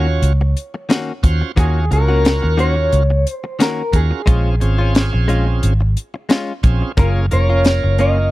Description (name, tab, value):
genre	straight-eighth soul blues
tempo	89 BPM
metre	4/4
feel	swing 55% on 16ths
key	unclear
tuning	A4 = 440 Hz
part	electric guitar through a small old amp	melody	0.0-8.3 s	Ab4 to Eb5	-21 LUFS	left 1 dB	tremolo
part	bright tonewheel organ	accompaniment	0.0-8.3 s	Bb3 to Db5	-24 LUFS	right 4 dB	slow rotary speaker, overdrive
part	direct-recorded clean electric guitar	stabs	0.0-8.2 s	Eb3 to Gb4	-23 LUFS	left 3 dB	none
part	vintage muted fingered electric bass	bass	0.0-8.3 s	F1 to Eb2	-15 LUFS	equal	none
part	tight funk drum kit	drums	0.2-8.2 s	hi-hat, kick drum, snare drum	-15 LUFS	equal	none
room	small room ambience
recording	dry, close 1970s-style studio recording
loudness	-14 LUFS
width	side -18 dB against mid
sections	0.0-8.3 A section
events	none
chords	0.0 Ebm7; 4.3 Bbm7; 7.0 Gbmaj7